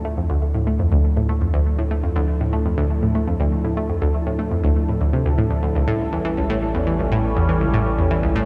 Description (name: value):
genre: ambient, sequencer-driven space music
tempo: 121 BPM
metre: 4/4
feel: straight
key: D minor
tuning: A4 = 440 Hz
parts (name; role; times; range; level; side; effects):
- sweeping resonant pad; sustained chords; 0.0-8.5 s; F3 to A4; -28 LUFS; equal; chorus
- analog pluck; riff; 0.0-8.4 s; C#2 to A3; -22 LUFS; equal; chorus, phaser, cassette tape, analog delay
- round analog bass; bass; 0.0-8.5 s; A1 to D2; -27 LUFS; equal; none
room: moderate cathedral reverb, RT60 5.2 s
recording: in a vast, echoing space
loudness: -20 LUFS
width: mono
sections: 0.0-8.5 A section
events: fade-in on analog synth pad 0.0-8.5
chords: 0.0 Dmadd9; 5.8 A7